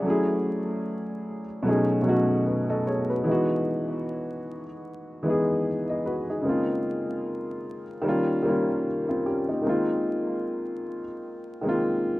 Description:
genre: hip hop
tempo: 75 BPM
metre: 4/4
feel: swing 58% on 16ths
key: unclear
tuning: A4 = 439 Hz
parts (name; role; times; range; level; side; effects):
- dark upright piano; solo; 0.0-12.2 s; B2 to D#5; -24 LUFS; equal; cassette tape, analog delay
room: light reverb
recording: rough home demo mix, vinyl crackle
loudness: -24 LUFS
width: side -18 dB against mid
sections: 0.0-12.2 A section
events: none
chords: 0.0 F#m7; 1.6 B13; 3.2 Emaj9; 6.4 A#m9; 8.0 D#9; 9.6 G#69

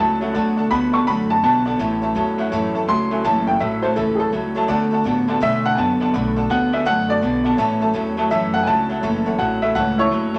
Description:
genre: rockabilly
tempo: 166 BPM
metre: 4/4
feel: swing 64% on 8ths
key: A major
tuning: A4 = 441 Hz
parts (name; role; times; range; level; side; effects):
- warm upright piano; melody; 0.0-10.4 s; E4 to C#6; -23 LUFS; equal; none
- honky-tonk upright piano; accompaniment; 0.0-10.4 s; C#5 to B5; -28 LUFS; equal; none
- picked steel-string acoustic guitar; accompaniment; 0.0-10.4 s; A2 to A4; -30 LUFS; equal; none
- electric guitar through a small old amp; riff; 0.0-10.4 s; A2 to B3; -24 LUFS; equal; none
- upright bass; bass; 0.0-10.4 s; F#1 to B2; -31 LUFS; equal; none
room: wet studio reverb, RT60 0.8 s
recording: nothing above 10.5 kHz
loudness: -19 LUFS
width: mono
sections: 0.0-10.4 A section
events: none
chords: 0.3 D6; 1.8 A6; 4.7 D6; 7.6 A6

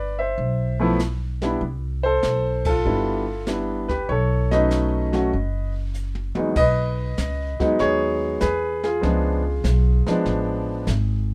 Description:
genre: jazz piano trio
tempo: 97 BPM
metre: 4/4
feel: swing 68% on 8ths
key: E major from 6.6 s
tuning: A4 = 441 Hz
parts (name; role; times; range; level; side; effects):
- warm baby grand piano; melody; 0.0-11.3 s; E2 to E5; -24 LUFS; equal; none
- upright bass; bass; 0.0-11.3 s; F#1 to E2; -26 LUFS; equal; none
- jazz brush drum kit; drums; 0.4-11.3 s; brushed snare drum, crash cymbal, hi-hat, kick drum, ride cymbal, snare drum, toms; -33 LUFS; equal; none
room: little or no reverb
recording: none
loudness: -22 LUFS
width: mono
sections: 0.0-6.6 A section; 6.6-11.3 B section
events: band accent 2.5-2.9; drum fill 5.9-6.6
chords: 0.0 G13; 4.1 B7; 6.6 Emaj7; 9.0 C#7b9

